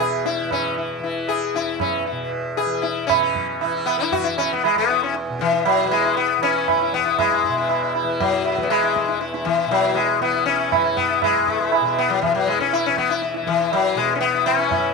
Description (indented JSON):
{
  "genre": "indian classical, Hindustani",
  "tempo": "118 BPM",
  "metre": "4/4",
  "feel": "straight",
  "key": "E raga bhupali",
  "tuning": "A4 = 440 Hz",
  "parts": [
    { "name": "sitar", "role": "melody", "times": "0.0-14.9 s", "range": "E3 to G#4", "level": "-20 LUFS", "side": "left 9 dB", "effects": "none" },
    { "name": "tanpura", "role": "drone", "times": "0.0-14.9 s", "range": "E2 to E3", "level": "-27 LUFS", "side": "right 2 dB", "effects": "none" },
    { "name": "tabla", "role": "percussion", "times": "0.3-14.9 s", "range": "none", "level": "-23 LUFS", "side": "right 16 dB", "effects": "none" }
  ],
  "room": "wet spring reverb, RT60 1.2 s, small room ambience",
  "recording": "1960s-style stereo with parts hard left and right",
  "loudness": "-18 LUFS",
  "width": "side -3 dB against mid",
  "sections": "0.0-3.1 A section; 3.1-14.9 B section",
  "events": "speeding up 0.0-14.9",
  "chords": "none"
}